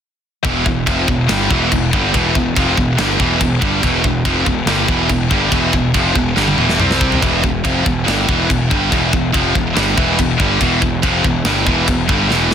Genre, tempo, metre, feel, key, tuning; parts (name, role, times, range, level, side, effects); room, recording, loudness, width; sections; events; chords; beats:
heavy metal; 142 BPM; 4/4; straight; E minor; A4 = 440 Hz
heavy high-gain guitar; riff; 0.4-12.5 s; E2 to C4; -18 LUFS; left 10 dB; distortion
high-gain distorted guitar; riff; 0.4-12.5 s; E2 to C4; -18 LUFS; right 10 dB; distortion
fuzz picked electric bass; bass; 0.4-12.5 s; E1 to C2; -20 LUFS; equal; overdrive
tight metal drum kit; drums; 0.4-12.5 s; crash cymbal, kick drum, snare drum, toms; -19 LUFS; equal; soft clipping on kick
little or no reverb; dense, heavily limited modern master; -13 LUFS; side -8 dB against mid
0.4-12.5 A section
drum fill 6.4-7.2, 12.3
0.4 Em; 6.8 C5; 7.2 Em
| 0.44 0.87 1.29 1.71 | 2.14 2.56 2.98 3.41 | 3.83 4.25 4.68 5.10 | 5.53 5.95 6.37 6.80 | 7.22 7.64 8.07 8.49 | 8.91 9.34 9.76 10.18 | 10.61 11.03 11.45 11.88 | 12.30